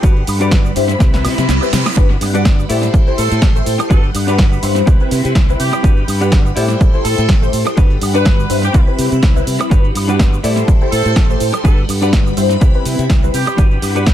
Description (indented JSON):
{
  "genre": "filtered disco house",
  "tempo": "124 BPM",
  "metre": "4/4",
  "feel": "swing 56% on 16ths",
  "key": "G major",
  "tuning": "A4 = 441 Hz",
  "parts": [
    { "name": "funky polysynth comp", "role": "accompaniment", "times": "0.0-14.1 s", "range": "G3 to F#5", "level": "-20 LUFS", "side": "left 2 dB", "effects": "chorus, phaser, sidechain pumping" },
    { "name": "phased string machine", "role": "sustained chords", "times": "0.0-14.1 s", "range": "G3 to C6", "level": "-23 LUFS", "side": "equal", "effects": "ensemble chorus, phaser, sidechain pumping" },
    { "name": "clean electric guitar", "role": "riff", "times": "0.0-14.1 s", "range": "C4 to D5", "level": "-24 LUFS", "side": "left 3 dB", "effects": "sidechain pumping" },
    { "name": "modern bright fingered electric bass", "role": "bass", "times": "0.0-14.1 s", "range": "G1 to C3", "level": "-18 LUFS", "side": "equal", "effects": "sidechain pumping" },
    { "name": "electronic kick drum", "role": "drums", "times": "0.0-14.1 s", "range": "none", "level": "-12 LUFS", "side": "equal", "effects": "overdrive, studio reverb" },
    { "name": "punchy analog drum machine", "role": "drums", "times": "0.0-14.1 s", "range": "cabasa, hi-hat, snare drum, woodblock", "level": "-21 LUFS", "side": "right 1 dB", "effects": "overdrive, studio reverb, tape echo" },
    { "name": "reverse cymbal", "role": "sound effects", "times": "1.2-2.0 s", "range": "none", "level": "-25 LUFS", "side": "right 6 dB", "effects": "none" },
    { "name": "warm horn section", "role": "melody", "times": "3.2-13.6 s", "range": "G4 to B4", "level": "-24 LUFS", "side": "right 1 dB", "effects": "sidechain pumping, tape echo" }
  ],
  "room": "digital ambience",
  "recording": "echo-heavy mix",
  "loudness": "-11 LUFS",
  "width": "side -11 dB against mid",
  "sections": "0.0-14.1 A section",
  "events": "drum fill 1.0-2.0; reverse cymbal 1.2-2.0; kick drops out 1.5-2.0",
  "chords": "0.0 Gmaj7; 1.0 Cmaj7; 2.0 Gmaj7; 2.7 Am7; 3.9 Gmaj7; 4.9 Cmaj7; 5.8 Gmaj7; 6.6 Am7; 7.8 Gmaj7; 8.7 Cmaj7; 9.7 Gmaj7; 10.4 Am7; 11.6 Gmaj7; 12.6 Cmaj7; 13.6 Gmaj7"
}